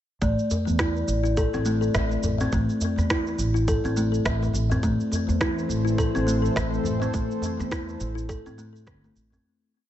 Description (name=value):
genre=organic downtempo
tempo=104 BPM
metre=4/4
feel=swing 59% on 16ths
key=A minor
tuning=A4 = 438 Hz
part: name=kalimba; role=arpeggios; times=0.2-9.4 s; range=A3 to E5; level=-26 LUFS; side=left 2 dB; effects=ping-pong delay
part: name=upright bass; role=bass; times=0.2-9.4 s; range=G1 to A2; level=-26 LUFS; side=right 1 dB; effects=sidechain pumping
part: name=electronic kick drum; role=drums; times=0.2-9.0 s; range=none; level=-28 LUFS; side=right 1 dB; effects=none
part: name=electronic shaker and rim click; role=drums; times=0.2-9.4 s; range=none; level=-32 LUFS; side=right 1 dB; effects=none
part: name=bronze singing bowl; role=texture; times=0.2-9.5 s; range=D5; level=-37 LUFS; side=left 2 dB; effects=none
part: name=djembe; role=percussion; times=0.5-9.4 s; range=none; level=-31 LUFS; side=left 1 dB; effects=none
part: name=warm analog pad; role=sustained chords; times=4.8-9.4 s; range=E3 to C5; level=-30 LUFS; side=left 1 dB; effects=chorus, sidechain pumping
room=light reverb, small room reverb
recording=nothing above 8.0 kHz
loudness=-22 LUFS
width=side -12 dB against mid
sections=0.2-9.4 groove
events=fade-out 6.4-9.4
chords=0.2 Am